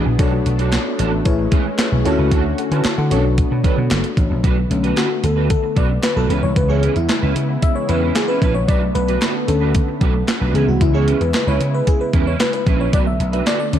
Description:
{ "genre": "early-eighties boogie funk", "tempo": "113 BPM", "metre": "4/4", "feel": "straight", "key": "B dorian", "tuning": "A4 = 440 Hz", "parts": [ { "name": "FM electric piano", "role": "accompaniment", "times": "0.0-13.8 s", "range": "D3 to A5", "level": "-22 LUFS", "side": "left 3 dB", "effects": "chorus" }, { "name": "warm analog pad", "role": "sustained chords", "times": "0.0-13.8 s", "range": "C#3 to G#4", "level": "-26 LUFS", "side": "equal", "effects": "chorus" }, { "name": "electric guitar at the edge of break-up", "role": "riff", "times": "0.0-13.8 s", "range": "E3 to C#5", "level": "-25 LUFS", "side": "right 7 dB", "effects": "ensemble chorus" }, { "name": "vintage slap bass", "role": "bass", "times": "0.0-13.8 s", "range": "F#1 to D3", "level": "-18 LUFS", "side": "equal", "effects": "none" }, { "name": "clean 12-bit digital drum machine", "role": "drums", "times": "0.2-13.8 s", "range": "handclaps, hi-hat, kick drum, snare drum", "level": "-19 LUFS", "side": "equal", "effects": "overdrive" }, { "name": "group handclap", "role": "percussion", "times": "0.7-13.6 s", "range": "none", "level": "-34 LUFS", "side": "left 2 dB", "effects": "none" } ], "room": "light reverb", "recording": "dark, warm production", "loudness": "-15 LUFS", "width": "side -10 dB against mid", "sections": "0.0-4.4 A section; 4.4-13.8 B section", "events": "FM electric piano solo 4.4-13.8", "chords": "0.2 Bm7; 1.3 Amaj9; 2.0 Dmaj7; 3.1 Bm7; 6.3 C#m7; 8.7 Bm7; 10.5 C#m7; 12.9 Bm7" }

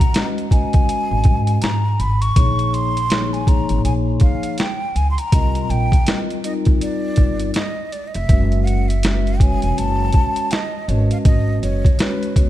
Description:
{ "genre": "hip hop, jazz-hop", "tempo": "81 BPM", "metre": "4/4", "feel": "swing 61% on 16ths", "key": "unclear", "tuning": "A4 = 440 Hz", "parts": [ { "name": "breathy mellow jazz flute", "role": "melody", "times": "0.0-12.5 s", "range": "Cb5 to Db6", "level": "-24 LUFS", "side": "equal", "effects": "tape echo" }, { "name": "boom bap sampler-style drum kit", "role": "drums", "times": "0.0-12.5 s", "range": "hi-hat, kick drum, snare drum", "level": "-16 LUFS", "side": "equal", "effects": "none" }, { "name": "vibraphone with soft mallets", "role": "accompaniment", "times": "0.1-12.5 s", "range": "F3 to Fb5", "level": "-24 LUFS", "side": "left 2 dB", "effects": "none" }, { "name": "upright bass", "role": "bass", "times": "1.1-12.5 s", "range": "Fb1 to Ab2", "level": "-20 LUFS", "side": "equal", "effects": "none" } ], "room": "light reverb", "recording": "dark, warm production", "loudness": "-15 LUFS", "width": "side -14 dB against mid", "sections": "0.0-12.5 A section", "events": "none", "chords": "0.0 Abm9; 2.4 Bbm7; 5.3 Cm9; 8.3 Gbm9; 10.9 Abm7" }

